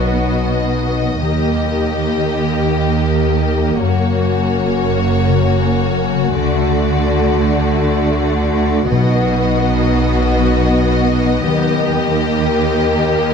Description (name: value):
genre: cinematic, heroic adventure film score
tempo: 94 BPM (dotted quarters)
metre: 12/8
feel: straight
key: B major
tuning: A4 = 440 Hz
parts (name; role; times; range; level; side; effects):
- warm symphonic violin section; melody; 0.0-13.3 s; C#5 to D#5; -24 LUFS; left 3 dB; none
- warm symphonic violin section; second line; 0.0-13.3 s; F#4 to G4; -23 LUFS; left 5 dB; none
- dark symphonic viola section; accompaniment; 0.0-13.3 s; A3 to B3; -21 LUFS; right 2 dB; none
- mellow French horn section; sustained chords; 0.0-13.3 s; F#3 to A#4; -21 LUFS; left 5 dB; none
- concert harp; arpeggios; 0.0-13.3 s; F#2 to A#4; -23 LUFS; left 11 dB; none
- rich symphonic cello section; bass; 0.0-13.3 s; D#2 to D3; -21 LUFS; right 3 dB; none
- rich symphonic double bass section; bass; 0.0-13.3 s; F#1 to D#2; -19 LUFS; right 3 dB; none
- timpani; percussion; 8.9-9.5 s; B2; -20 LUFS; right 1 dB; none
room: light reverb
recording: close, detailed microphones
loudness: -13 LUFS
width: side -6 dB against mid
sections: 0.0-13.3 A section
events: build-up 0.0-13.3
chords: 0.0 B; 1.2 D#; 3.8 F#; 6.4 D; 8.9 B; 11.5 D#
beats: 0.58 | 1.23 1.87 2.52 3.16 | 3.80 4.44 5.08 5.72 | 6.36 7.00 7.64 8.28 | 8.92 9.55 10.19 10.83 | 11.47 12.11 12.75